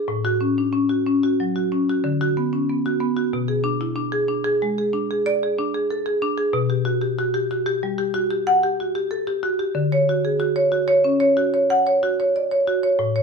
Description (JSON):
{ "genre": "classical, contemporary piece for solo marimba", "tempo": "93 BPM", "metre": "5/4", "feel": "rubato", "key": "unclear", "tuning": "A4 = 440 Hz", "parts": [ { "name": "marimba with medium hard mallets", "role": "solo", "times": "0.0-13.2 s", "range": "A2 to F#5", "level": "-19 LUFS", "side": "equal", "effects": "none" } ], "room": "light reverb", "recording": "close, detailed microphones", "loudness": "-19 LUFS", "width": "side -5 dB against mid", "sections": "0.0-13.2 A section", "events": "none", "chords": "0.1 A6; 2.0 D6; 3.3 Bm6; 6.5 Gmaj7/B; 9.8 Dmaj7" }